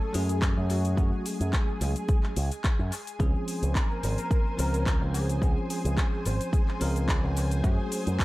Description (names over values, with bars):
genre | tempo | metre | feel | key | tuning
nu-disco, nu disco | 108 BPM | 4/4 | swing 54% on 16ths | Db major | A4 = 440 Hz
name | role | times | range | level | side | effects
wide unison lead | melody | 0.0-8.2 s | Gb4 to C5 | -36 LUFS | right 1 dB | analog delay
bell-like tine electric piano | accompaniment | 0.0-8.2 s | F3 to Bb4 | -33 LUFS | equal | medium stereo tremolo, tape echo
lush unison pad | sustained chords | 0.0-8.2 s | Ab4 to Ab5 | -40 LUFS | left 1 dB | chorus, phaser, sidechain pumping
picked electric bass with an envelope filter | bass | 0.1-8.2 s | Ab1 to Gb2 | -27 LUFS | equal | tube saturation, sidechain pumping
pop drum kit | drums | 0.1-8.2 s | handclaps, hi-hat, shaker | -35 LUFS | left 1 dB | studio ambience, tape echo
electronic kick drum | drums | 0.4-8.2 s | none | -26 LUFS | equal | studio ambience
room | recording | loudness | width
light reverb, digital ambience | echo-heavy mix | -24 LUFS | side -18 dB against mid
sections
0.0-8.2 A section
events
none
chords
0.0 Gbmadd9; 3.2 Dbmaj7; 7.6 Gbmadd9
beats
0.42 | 0.98 1.53 2.09 2.64 | 3.20 3.75 4.31 4.87 | 5.42 5.98 6.53 7.09 | 7.64 8.20